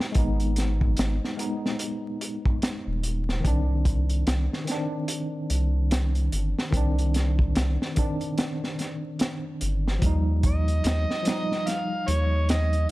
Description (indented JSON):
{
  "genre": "trip hop",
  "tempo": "73 BPM",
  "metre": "4/4",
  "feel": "swing 60% on 16ths",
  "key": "unclear",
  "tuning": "A4 = 442 Hz",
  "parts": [
    { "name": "tine electric piano", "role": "accompaniment", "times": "0.0-12.9 s", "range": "Eb3 to D#4", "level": "-30 LUFS", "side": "equal", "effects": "overdrive, fast stereo tremolo, harmonic tremolo, vintage 12-bit sampler grit" },
    { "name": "crunchy breakbeat drum kit", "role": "drums", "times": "0.0-12.9 s", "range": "hi-hat, kick drum, snare drum", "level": "-27 LUFS", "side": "equal", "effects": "none" },
    { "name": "round analog bass", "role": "bass", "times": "0.2-12.9 s", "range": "D#1 to D#2", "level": "-24 LUFS", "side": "equal", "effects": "tube saturation" },
    { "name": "overdriven harmonica", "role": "melody", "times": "10.5-12.9 s", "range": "C#5 to E#5", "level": "-29 LUFS", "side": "right 1 dB", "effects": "none" }
  ],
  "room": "small room reverb",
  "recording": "vinyl crackle",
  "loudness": "-23 LUFS",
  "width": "side -18 dB against mid",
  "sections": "0.0-12.9 A section",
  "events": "none",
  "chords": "0.0 G#m; 3.4 Cmadd9; 10.0 D#add9"
}